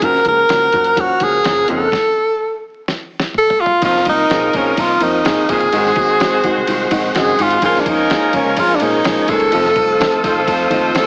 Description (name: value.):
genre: uptempo 1960s-style soul.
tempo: 126 BPM.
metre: 4/4.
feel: straight.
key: unclear.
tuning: A4 = 440 Hz.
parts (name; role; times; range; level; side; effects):
breathy tenor saxophone; melody; 0.0-11.1 s; Db4 to Bb4; -17 LUFS; equal; none.
clear upright piano; accompaniment; 0.0-11.1 s; Eb3 to C5; -22 LUFS; equal; none.
tonewheel organ; sustained chords; 0.0-11.1 s; Ab4 to F6; -27 LUFS; equal; slow rotary speaker, overdrive, chorus vibrato.
breathy baritone saxophone; riff; 0.0-11.1 s; Eb2 to Bb2; -26 LUFS; equal; none.
vintage muted fingered electric bass; bass; 0.0-10.9 s; F1 to Bb2; -35 LUFS; equal; none.
lo-fi sampler-style drum kit; drums; 0.0-11.1 s; hi-hat, kick drum, ride cymbal, snare drum, toms; -25 LUFS; equal; none.
warm horn section; second line; 3.8-11.1 s; Db4 to C5; -23 LUFS; equal; slapback echo.
room: moderate large studio reverb, RT60 1.3 s.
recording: heavily compressed radio sound, vinyl crackle, small speaker sound.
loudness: -15 LUFS.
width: mono.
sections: 0.0-3.8 A section; 3.8-11.1 B section.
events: stop 1.9-3.8; drum fill 2.9-3.8.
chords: 0.0 Gbmaj7; 1.9 N.C.; 3.8 F7sus4; 5.7 Ab7; 7.6 Bbm7; 9.5 F7.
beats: | 0.02 0.50 0.97 1.45 | 1.92 2.40 2.87 3.35 | 3.82 4.30 4.77 5.25 | 5.72 6.20 6.67 7.15 | 7.62 8.10 8.57 9.05 | 9.53 10.00 10.48 10.95.